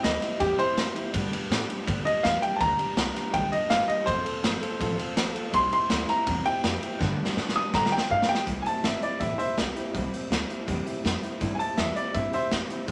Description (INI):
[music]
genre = rockabilly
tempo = 164 BPM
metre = 4/4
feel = straight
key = C major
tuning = A4 = 440 Hz
[part]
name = bright upright piano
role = melody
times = 0.0-12.5 s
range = G4 to Eb6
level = -28 LUFS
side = equal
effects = none
[part]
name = picked steel-string acoustic guitar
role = accompaniment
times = 0.0-12.9 s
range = G2 to A4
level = -36 LUFS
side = equal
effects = none
[part]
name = upright bass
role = bass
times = 0.0-12.9 s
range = F1 to B2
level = -38 LUFS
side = equal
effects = none
[part]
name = raw garage drum kit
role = drums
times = 0.0-12.9 s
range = hi-hat, kick drum, ride cymbal, snare drum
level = -31 LUFS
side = equal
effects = none
[sound]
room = moderate studio reverb, RT60 0.6 s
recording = none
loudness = -27 LUFS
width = mono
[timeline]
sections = 0.0-8.5 A section; 8.5-12.9 B section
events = upright piano solo 0.0-8.5; drum fill 7.0-8.5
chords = 0.0 C; 1.1 G; 4.1 F; 5.5 C; 7.0 G; 8.5 C